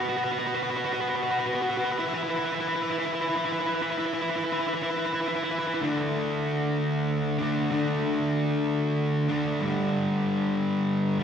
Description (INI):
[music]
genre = rock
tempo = 63 BPM (dotted quarters)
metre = 6/8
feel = straight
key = unclear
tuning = A4 = 441 Hz
[part]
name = fuzz guitar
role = solo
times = 0.0-11.2 s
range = G2 to B4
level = -25 LUFS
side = equal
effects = distortion
[sound]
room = wet church reverb, RT60 2.6 s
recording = recorded in a church or concert hall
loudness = -25 LUFS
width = side -8 dB against mid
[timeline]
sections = 0.0-5.8 A section; 5.8-11.2 B section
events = build-up 0.0-5.8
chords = 0.0 F#sus4; 2.0 E5; 5.8 D5; 9.6 G5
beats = | 0.10 1.05 | 2.00 2.96 | 3.91 4.86 | 5.81 6.77 | 7.72 8.67 | 9.62 10.58